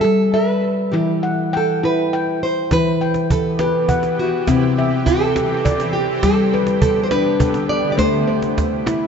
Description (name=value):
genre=world meditative, meditative tuned percussion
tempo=68 BPM (dotted quarters)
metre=6/8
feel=straight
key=E minor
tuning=A4 = 440 Hz
part: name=nylon-string guitar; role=melody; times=0.0-9.1 s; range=E4 to D5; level=-20 LUFS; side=right 2 dB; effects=tape echo
part: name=handpan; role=arpeggios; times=0.0-9.1 s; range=C3 to G5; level=-18 LUFS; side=left 3 dB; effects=none
part: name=shimmering ambient pad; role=sustained chords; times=3.4-9.1 s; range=C3 to G4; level=-24 LUFS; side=right 2 dB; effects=chorus, built-in reverb, tremolo
part: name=cajon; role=percussion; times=2.7-9.0 s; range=none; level=-22 LUFS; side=right 2 dB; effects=none
room=wet church reverb, RT60 3.0 s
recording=nothing above 7.8 kHz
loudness=-15 LUFS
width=side -6 dB against mid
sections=0.0-2.7 A section; 2.7-9.1 B section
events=none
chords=0.0 G; 0.9 Em; 4.5 C; 6.2 G; 8.0 Am